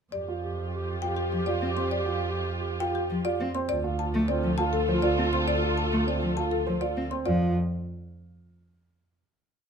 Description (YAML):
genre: classical, minimalist pattern music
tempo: 101 BPM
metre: 3/4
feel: straight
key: F major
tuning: A4 = 442 Hz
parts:
  - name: marimba with medium hard mallets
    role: melody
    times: 0.1-7.5 s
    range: G4 to C6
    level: -32 LUFS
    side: left 5 dB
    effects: none
  - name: dark clarinet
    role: second line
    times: 0.1-7.0 s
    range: F4 to G4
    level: -34 LUFS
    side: right 2 dB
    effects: none
  - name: dark symphonic string section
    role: sustained chords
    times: 0.1-7.1 s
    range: F4 to A4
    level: -33 LUFS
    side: left 2 dB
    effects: none
  - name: rich double bass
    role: bass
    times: 0.1-7.5 s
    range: D2 to F2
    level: -31 LUFS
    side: right 3 dB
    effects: none
  - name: dark baby grand piano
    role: arpeggios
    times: 0.3-7.5 s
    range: C4 to C5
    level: -32 LUFS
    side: right 6 dB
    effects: none
  - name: warm cello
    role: accompaniment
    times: 1.3-7.5 s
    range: F3 to C4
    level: -29 LUFS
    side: left 2 dB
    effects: none
room: light reverb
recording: close, detailed microphones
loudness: -25 LUFS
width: side -6 dB against mid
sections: 0.1-7.3 A section; 7.3-9.0 final chord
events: none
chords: 0.1 Fsus2; 3.7 Dm; 7.3 N.C.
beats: | 0.13 0.72 1.32 | 1.91 2.51 3.10 | 3.70 4.29 4.88 | 5.48 6.07 6.67 | 7.26